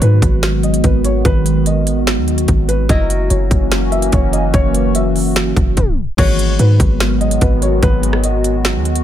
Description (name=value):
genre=hip hop, atmospheric cloud-rap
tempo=146 BPM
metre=4/4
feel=half-time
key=G# minor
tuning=A4 = 439 Hz
part: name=felt-muted upright piano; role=melody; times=0.0-8.6 s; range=A#4 to E5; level=-23 LUFS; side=left 2 dB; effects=digital delay
part: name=dark analog pad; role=sustained chords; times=0.0-9.0 s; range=D#3 to F#4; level=-18 LUFS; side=right 1 dB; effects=chorus, phaser, sidechain pumping
part: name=warm 808-style bass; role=bass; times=0.0-9.0 s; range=F#1 to G#2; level=-16 LUFS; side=equal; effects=none
part: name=trap drum kit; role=drums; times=0.0-9.0 s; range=crash cymbal, hi-hat, kick drum, rim click, snare drum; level=-17 LUFS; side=equal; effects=none
part: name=qanun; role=texture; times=0.0-9.0 s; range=F#3 to B4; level=-30 LUFS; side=left 1 dB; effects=none
room=little or no reverb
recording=tape stop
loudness=-12 LUFS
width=side -11 dB against mid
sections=0.0-6.2 A section; 6.2-9.0 B section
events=tape stop 5.8-6.2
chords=0.0 G#m7; 2.9 F#7; 6.2 G#m7